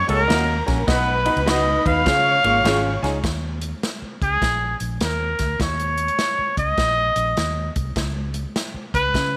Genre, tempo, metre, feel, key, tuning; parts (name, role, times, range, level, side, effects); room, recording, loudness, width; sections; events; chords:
uptempo 1960s-style soul; 102 BPM; 4/4; swing 65% on 8ths; A4 = 442 Hz
clear trumpet; melody; 0.0-9.4 s; G#4 to E#5; -23 LUFS; equal
warm studio violin section; second line; 0.0-3.2 s; A#4 to C#6; -31 LUFS; equal
clear upright piano; accompaniment; 0.1-3.1 s; B2 to G#5; -29 LUFS; equal
electric guitar through a small old amp; riff; 0.1-3.2 s; G#3 to D#4; -30 LUFS; equal
vintage muted fingered electric bass; bass; 0.1-9.4 s; G#1 to C#3; -28 LUFS; equal
swinging big-band drum kit; drums; 0.1-9.3 s; hi-hat, kick drum, ride cymbal, snare drum; -28 LUFS; equal
electric guitar through a small old amp; stabs; 0.3-2.8 s; C#4 to D#5; -31 LUFS; equal
light reverb, small room ambience; -21 LUFS; mono
0.0-3.2 A section; 3.2-9.4 B section
0.0 F#; 0.9 B; 2.1 C#; 3.2 D#5; 8.0 N.C.